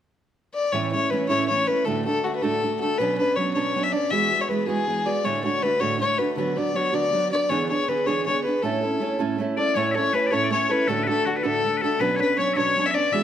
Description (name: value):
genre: celtic folk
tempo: 106 BPM (dotted quarters)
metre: 6/8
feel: straight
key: A major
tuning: A4 = 440 Hz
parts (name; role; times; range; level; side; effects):
- dark fiddle; melody; 0.5-13.2 s; F#4 to E5; -23 LUFS; left 3 dB; none
- fingerpicked steel-string acoustic guitar; accompaniment; 0.7-13.2 s; D2 to A4; -25 LUFS; right 4 dB; none
- loud bright bagpipes; second line; 9.6-13.2 s; F#4 to E5; -26 LUFS; left 4 dB; none
room: moderate recital hall reverb, RT60 1.4 s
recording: none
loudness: -21 LUFS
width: side -10 dB against mid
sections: 0.7-9.8 A section; 9.8-13.2 A section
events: none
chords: 0.0 N.C.; 0.7 A; 1.9 D; 3.0 Bmadd9; 4.1 Eadd9; 5.2 D; 6.4 Bm/D; 7.5 E7; 8.6 A; 10.9 D; 12.0 Bmadd9